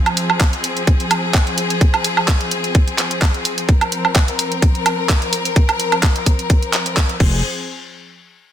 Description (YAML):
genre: bass house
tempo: 128 BPM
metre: 4/4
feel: swing 54% on 16ths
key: F minor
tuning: A4 = 440 Hz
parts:
  - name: clear studio string section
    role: sustained chords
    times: 0.0-7.4 s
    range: F3 to Bb4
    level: -22 LUFS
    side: left 2 dB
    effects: sidechain pumping
  - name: garage drum kit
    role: drums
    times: 0.1-7.3 s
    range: crash cymbal, handclaps, hi-hat, woodblock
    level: -19 LUFS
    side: right 2 dB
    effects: overdrive
  - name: electronic kick drum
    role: drums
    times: 0.4-7.3 s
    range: none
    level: -14 LUFS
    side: equal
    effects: overdrive
  - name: growling FM bass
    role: bass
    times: 7.2-7.4 s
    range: F1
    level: -19 LUFS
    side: equal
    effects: tube saturation, sidechain pumping
room: digital ambience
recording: dense, heavily limited modern master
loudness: -14 LUFS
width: side -10 dB against mid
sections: 0.0-7.4 A section; 7.4-8.5 B section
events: none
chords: 0.0 Fm; 7.4 N.C.